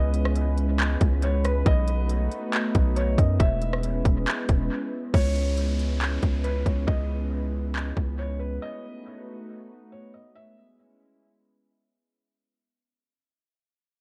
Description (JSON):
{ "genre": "hip hop, atmospheric cloud-rap", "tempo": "138 BPM", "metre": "4/4", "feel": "half-time", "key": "C# minor", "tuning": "A4 = 440 Hz", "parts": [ { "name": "felt-muted upright piano", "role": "melody", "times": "0.0-10.8 s", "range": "B4 to E5", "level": "-36 LUFS", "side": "equal", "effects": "low-pass filter, dub echo" }, { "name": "warbly tape-like pad", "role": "sustained chords", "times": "0.0-12.1 s", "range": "G#3 to B4", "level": "-34 LUFS", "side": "equal", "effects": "chorus, built-in reverb, sidechain pumping" }, { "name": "long sustained 808-style bass", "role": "bass", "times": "0.0-8.6 s", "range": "E1 to F#2", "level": "-27 LUFS", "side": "equal", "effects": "none" }, { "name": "trap drum kit", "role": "drums", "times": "0.1-8.1 s", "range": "handclaps, hi-hat, kick drum, rim click", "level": "-27 LUFS", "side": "equal", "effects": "none" }, { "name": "downlifter", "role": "sound effects", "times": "5.1-8.6 s", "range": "none", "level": "-45 LUFS", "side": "equal", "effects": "none" } ], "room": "light reverb", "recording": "echo-heavy mix, cassette tape", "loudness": "-25 LUFS", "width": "mono", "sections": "0.0-5.1 A section; 5.1-12.1 B section", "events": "break 4.7-5.1; fade-out 5.1-12.1", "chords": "0.0 C#m7; 1.7 B7; 3.4 E6; 5.1 C#m7; 8.6 B7; 10.4 E6" }